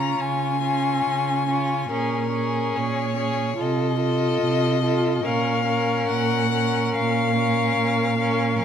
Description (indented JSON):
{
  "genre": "classical, slow romantic movement for string quartet",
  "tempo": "72 BPM",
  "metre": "4/4",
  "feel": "rubato",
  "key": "unclear",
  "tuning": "A4 = 440 Hz",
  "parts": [
    { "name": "rich violin", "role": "melody", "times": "0.0-8.6 s", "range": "Bb4 to Bb5", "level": "-25 LUFS", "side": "left 8 dB", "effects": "none" },
    { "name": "warm violin", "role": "second line", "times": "0.0-8.6 s", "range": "F4 to Bb4", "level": "-28 LUFS", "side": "left 3 dB", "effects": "none" },
    { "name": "warm viola", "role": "accompaniment", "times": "0.0-8.6 s", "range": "Db4 to F4", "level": "-27 LUFS", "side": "right 3 dB", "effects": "none" },
    { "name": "dark cello", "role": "bass", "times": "0.0-8.6 s", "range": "F2 to Db3", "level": "-25 LUFS", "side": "right 4 dB", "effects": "none" }
  ],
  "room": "moderate recital hall reverb, RT60 1.5 s",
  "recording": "close, detailed microphones",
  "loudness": "-20 LUFS",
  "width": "side -8 dB against mid",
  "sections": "0.0-8.6 A section",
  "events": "none",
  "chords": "0.0 Db; 1.9 Bbm7; 3.6 F7/C; 5.3 Bbm"
}